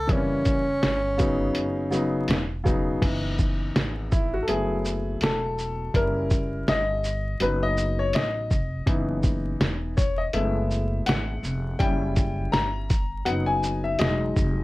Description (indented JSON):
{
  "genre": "hip hop, jazz-hop",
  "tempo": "82 BPM",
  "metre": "4/4",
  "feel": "swing 57% on 16ths",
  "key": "F# dorian",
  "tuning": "A4 = 442 Hz",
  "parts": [
    { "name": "breathy tenor saxophone", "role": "melody", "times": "0.0-2.3 s", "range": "C#4 to A4", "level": "-27 LUFS", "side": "right 1 dB", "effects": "none" },
    { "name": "upright bass", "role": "bass", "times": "0.0-14.6 s", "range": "E1 to A1", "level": "-29 LUFS", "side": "equal", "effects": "none" },
    { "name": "warm concert grand piano", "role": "accompaniment", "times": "0.1-14.6 s", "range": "C#3 to A#5", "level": "-26 LUFS", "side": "left 2 dB", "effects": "none" },
    { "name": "lo-fi sampler-style drum kit", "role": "drums", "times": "0.1-14.6 s", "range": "crash cymbal, hi-hat, kick drum, shaker, snare drum", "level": "-25 LUFS", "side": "equal", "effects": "none" }
  ],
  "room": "light reverb",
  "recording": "dark, warm production, vinyl crackle",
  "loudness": "-22 LUFS",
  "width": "side -19 dB against mid",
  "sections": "0.0-3.0 A section; 3.0-14.6 B section",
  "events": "grand piano solo 3.0-14.6",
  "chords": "0.1 D#7b9/F#; 1.6 Badd9/F#; 2.3 Esus2; 3.0 F#13sus4; 4.5 F#m11; 5.9 D#7b9/F#; 7.4 B7#11; 8.9 C#m11; 10.3 F#m11; 11.8 F#7b9; 13.3 G#m7/F#; 14.0 Emaj9"
}